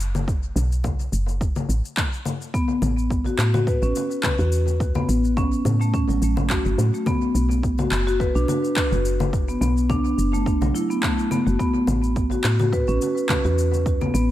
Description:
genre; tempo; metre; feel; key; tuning
organic downtempo; 106 BPM; 4/4; swing 55% on 16ths; B minor; A4 = 440 Hz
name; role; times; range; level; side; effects
woody FM bass; bass; 0.0-14.3 s; F#1 to A2; -22 LUFS; equal; sidechain pumping
electronic shaker, congas and handclaps; drums; 0.0-14.3 s; none; -28 LUFS; left 2 dB; overdrive, small room ambience, tape echo
electronic kick drum; drums; 0.3-14.0 s; none; -25 LUFS; equal; overdrive, small room ambience
marimba with soft mallets; arpeggios; 2.5-14.2 s; F#3 to B4; -23 LUFS; equal; tape echo
room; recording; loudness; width
light reverb, digital ambience; echo-heavy mix; -19 LUFS; side -13 dB against mid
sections
0.0-14.3 A section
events
none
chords
0.0 B5; 2.5 A; 7.1 Bm; 11.6 A5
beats
| 0.27 0.84 1.41 1.97 | 2.54 3.10 3.67 4.24 | 4.80 5.37 5.93 6.50 | 7.07 7.63 8.20 8.77 | 9.33 9.90 10.46 11.03 | 11.60 12.16 12.73 13.29 | 13.86

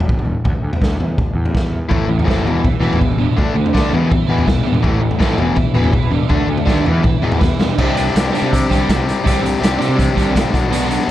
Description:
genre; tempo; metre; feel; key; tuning
indie rock; 164 BPM; 4/4; straight; unclear; A4 = 441 Hz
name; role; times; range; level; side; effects
fuzz picked electric bass; bass; 0.0-11.1 s; E1 to C3; -22 LUFS; equal; overdrive
raw garage drum kit; drums; 0.0-11.0 s; crash cymbal, hi-hat, kick drum, snare drum, toms; -17 LUFS; equal; none
crunchy overdriven guitar; riff; 1.9-11.1 s; E2 to G4; -18 LUFS; left 4 dB; none
overdriven semi-hollow guitar; riff; 1.9-11.0 s; A2 to B4; -21 LUFS; right 7 dB; ensemble chorus, tape echo
room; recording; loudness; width
moderate small room reverb, RT60 0.6 s; dark, warm production; -13 LUFS; side -13 dB against mid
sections
0.0-7.8 A section; 7.8-11.1 B section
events
drum fill 1.5-1.9, 7.4-7.8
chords
0.0 N.C.; 1.9 Am; 2.5 E5; 3.4 D5; 3.9 E5; 4.8 Am; 5.4 E5; 6.3 D5; 6.9 E5; 7.8 Csus2; 10.5 Bm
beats
0.08 | 0.44 0.81 1.17 1.54 | 1.90 2.27 2.63 3.00 | 3.37 3.73 4.10 4.47 | 4.83 5.20 5.57 5.93 | 6.30 6.67 7.04 7.40 | 7.77 8.14 8.51 8.87 | 9.24 9.61 9.97 10.34 | 10.71 11.07

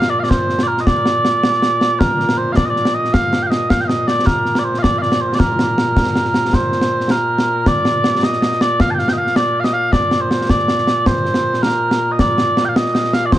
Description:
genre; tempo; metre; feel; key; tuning
scottish traditional, Scottish pipe music; 106 BPM (dotted quarters); 6/8; straight; Bb major; A4 = 442 Hz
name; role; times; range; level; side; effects
mellow small bagpipes; melody; 0.0-13.4 s; Bb2 to A5; -16 LUFS; right 1 dB; tape echo
concert snare drum and concert bass drum; drums; 0.0-13.4 s; none; -17 LUFS; equal; none
room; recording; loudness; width
moderate small room reverb, RT60 0.6 s; dark, warm production; -14 LUFS; side -13 dB against mid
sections
0.0-6.5 A section; 6.5-13.4 B section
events
none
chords
none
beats
0.31 | 0.87 1.44 | 2.00 2.57 | 3.14 3.70 | 4.27 4.83 | 5.40 5.97 | 6.53 7.10 | 7.67 8.23 | 8.80 9.36 | 9.93 10.49 | 11.06 11.63 | 12.19 12.76 | 13.32

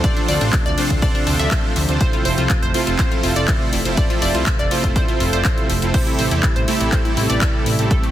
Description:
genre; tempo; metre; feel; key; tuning
progressive house; 122 BPM; 4/4; straight; unclear; A4 = 440 Hz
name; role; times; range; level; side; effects
warm analog pad; sustained chords; 0.0-8.1 s; C3 to E5; -25 LUFS; right 1 dB; chorus, sidechain pumping
analog pluck; arpeggios; 0.0-8.1 s; A3 to E5; -24 LUFS; left 1 dB; chorus, sidechain pumping, digital delay
soft supersaw; stabs; 0.0-8.1 s; A3 to D5; -23 LUFS; right 2 dB; sidechain pumping, digital delay
electronic kick drum; drums; 0.0-8.0 s; none; -19 LUFS; equal; none
house drum kit; drums; 0.0-8.1 s; crash cymbal, handclaps, hi-hat; -25 LUFS; left 1 dB; none
fat analog bass; bass; 0.3-7.9 s; F1 to E2; -22 LUFS; equal; sidechain pumping
room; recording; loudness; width
little or no reverb; dense, heavily limited modern master; -15 LUFS; side -12 dB against mid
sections
0.0-8.1 A section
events
none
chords
0.0 Dm7; 2.0 Fmaj7; 5.9 Am7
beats
| 0.04 0.53 1.02 1.51 | 2.01 2.50 2.99 3.48 | 3.97 4.47 4.96 5.45 | 5.94 6.43 6.92 7.42 | 7.91

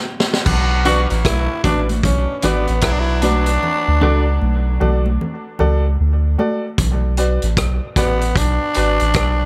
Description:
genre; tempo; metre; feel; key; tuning
dub reggae; 76 BPM; 4/4; swing 62% on 16ths; B dorian; A4 = 444 Hz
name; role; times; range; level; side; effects
vintage drum kit; drums; 0.2-9.4 s; crash cymbal, hi-hat, kick drum, rim click, snare drum; -23 LUFS; equal; none
warm horn section; second line; 0.5-3.4 s; F#3 to F#4; -29 LUFS; equal; dub echo
soft dub sub bass; bass; 0.5-9.5 s; G#1 to D2; -20 LUFS; equal; none
congas; percussion; 0.5-7.0 s; none; -28 LUFS; equal; dub echo
growling tenor saxophone; melody; 0.9-9.5 s; B3 to F#4; -23 LUFS; equal; dub echo
electric guitar at the edge of break-up; accompaniment; 0.9-4.2 s; D4 to D5; -28 LUFS; equal; dub echo
warm upright piano; stabs; 0.9-9.0 s; F#4 to D5; -27 LUFS; equal; dub echo
room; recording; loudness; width
light reverb, small room ambience; none; -17 LUFS; mono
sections
0.5-9.5 A section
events
break 0.0-0.5; drum fill 0.0-0.5; part muted 3.6-6.8, 6.8-9.5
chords
0.5 Bm; 3.6 D; 6.8 Bm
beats
| 0.46 1.25 2.04 2.83 | 3.62 4.41 5.20 5.99 | 6.78 7.57 8.36 9.15

